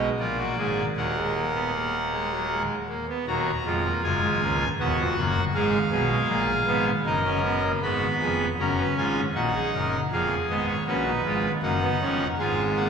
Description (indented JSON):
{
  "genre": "classical, baroque-style 4-part fugue for pipe organ",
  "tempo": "79 BPM",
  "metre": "3/4",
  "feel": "straight",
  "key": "Eb minor",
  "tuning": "A4 = 440 Hz",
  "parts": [
    { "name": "pipe organ, trumpet", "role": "solo", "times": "0.0-12.9 s", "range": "Db1 to Cb6", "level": "-22 LUFS", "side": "equal", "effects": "none" }
  ],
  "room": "wet church reverb, RT60 3.3 s",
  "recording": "small room ambience",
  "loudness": "-23 LUFS",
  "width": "side -6 dB against mid",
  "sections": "0.0-3.3 A section; 3.3-7.8 B section; 7.8-12.9 A section",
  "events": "none",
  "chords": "0.2 Bb; 1.0 Ebm; 4.8 B/D#; 5.5 Abm; 7.1 Ebm/Gb; 7.8 Abm; 9.3 Gb/Bb; 10.1 Fdim; 11.6 Ebm/Gb; 12.4 Fm/Ab"
}